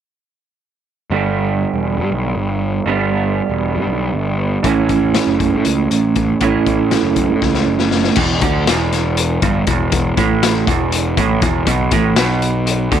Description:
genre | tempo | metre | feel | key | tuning
psychedelic rock | 238 BPM (eighths) | 7/8 | straight | E dorian | A4 = 442 Hz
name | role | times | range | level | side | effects
electric guitar through a small old amp | riff | 1.1-13.0 s | E2 to E4 | -17 LUFS | right 7 dB | harmonic tremolo
fuzz picked electric bass | bass | 1.1-13.0 s | E1 to A2 | -19 LUFS | left 2 dB | overdrive
raw garage drum kit | drums | 4.6-13.0 s | crash cymbal, hi-hat, kick drum, snare drum | -18 LUFS | left 5 dB | none
room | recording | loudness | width
light reverb, small room ambience | 1960s-style stereo | -14 LUFS | side -9 dB against mid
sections
1.1-8.2 A section; 8.2-13.0 B section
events
drum fill 7.4-8.2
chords
1.1 G; 4.6 A; 8.2 Em7; 11.7 Bm

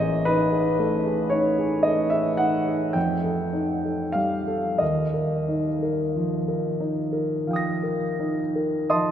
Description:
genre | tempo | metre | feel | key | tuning
classical, impressionist solo piano | 27-39 BPM (dotted quarters) | 9/8 | rubato | Eb lydian | A4 = 440 Hz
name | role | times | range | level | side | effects
warm grand piano | solo | 0.0-9.1 s | A1 to Bb6 | -22 LUFS | equal | none
room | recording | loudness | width
wet cathedral reverb, RT60 6.3 s | recorded in a church or concert hall | -22 LUFS | side -10 dB against mid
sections
0.0-9.1 A section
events
none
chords
0.0 Amaj9#11; 3.0 F9; 4.8 Ebadd9

